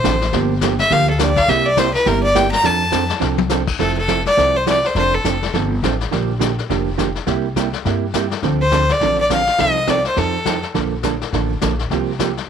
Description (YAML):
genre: country, western swing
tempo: 207 BPM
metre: 4/4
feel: swing 60% on 8ths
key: F major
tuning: A4 = 440 Hz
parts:
  - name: clear fiddle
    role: melody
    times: 0.0-5.5, 8.6-10.6 s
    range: A4 to Bb5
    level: -17 LUFS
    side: left 1 dB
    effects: none
  - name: vintage hollow-body jazz guitar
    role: accompaniment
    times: 0.0-12.3 s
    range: C3 to A4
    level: -21 LUFS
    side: right 14 dB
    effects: none
  - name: upright bass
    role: bass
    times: 0.0-12.4 s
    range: F1 to G2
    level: -22 LUFS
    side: left 1 dB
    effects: none
  - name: vintage brush drum kit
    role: drums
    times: 0.0-12.5 s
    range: brushed snare drum, crash cymbal, hi-hat, kick drum, snare drum, toms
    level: -23 LUFS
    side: left 10 dB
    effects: none
room: light reverb, studio reverb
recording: 1960s-style stereo with parts hard left and right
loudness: -15 LUFS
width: side -8 dB against mid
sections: 0.0-3.8 A section; 3.8-12.5 B section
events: fiddle solo 0.0-3.8; drum fill 3.2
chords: 0.3 Gm7; 1.5 C7; 2.6 F6; 3.8 Fmaj7; 5.0 Dm7/F; 6.1 Bb6; 7.3 C7; 8.4 Dm7; 9.6 F7/C; 10.7 Bbmaj7; 11.9 C7sus4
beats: 0.04 | 0.33 0.62 0.91 1.19 | 1.48 1.77 2.06 2.35 | 2.64 2.93 3.22 3.50 | 3.79 4.08 4.37 4.66 | 4.95 5.24 5.53 5.82 | 6.11 6.40 6.69 6.98 | 7.27 7.56 7.85 8.14 | 8.43 8.72 9.01 9.30 | 9.59 9.88 10.17 10.46 | 10.75 11.04 11.33 11.62 | 11.90 12.19 12.48